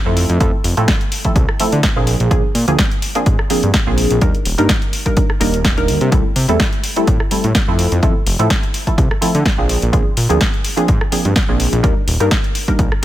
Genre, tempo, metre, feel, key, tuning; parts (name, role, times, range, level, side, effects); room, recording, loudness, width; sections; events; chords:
filtered disco house; 126 BPM; 4/4; swing 54% on 16ths; A4 = 440 Hz
funky polysynth comp; accompaniment; 0.1-13.0 s; F3 to Bb4; -19 LUFS; right 1 dB; chorus, phaser, sidechain pumping, low-pass filter
fat analog bass; bass; 0.1-12.9 s; Eb1 to D3; -17 LUFS; equal; sidechain pumping, low-pass filter
punchy analog drum machine; drums; 0.2-13.0 s; hi-hat, rim click, snare drum; -20 LUFS; equal
electronic kick drum; drums; 0.4-12.9 s; -17 LUFS; equal
digital ambience; -13 LUFS; side -14 dB against mid
0.0-13.0 A section
0.2 Fmaj7; 2.1 Bb9; 4.2 Ebmaj7; 6.1 C6; 7.8 Fmaj7; 9.7 Bb9; 11.8 Ebmaj7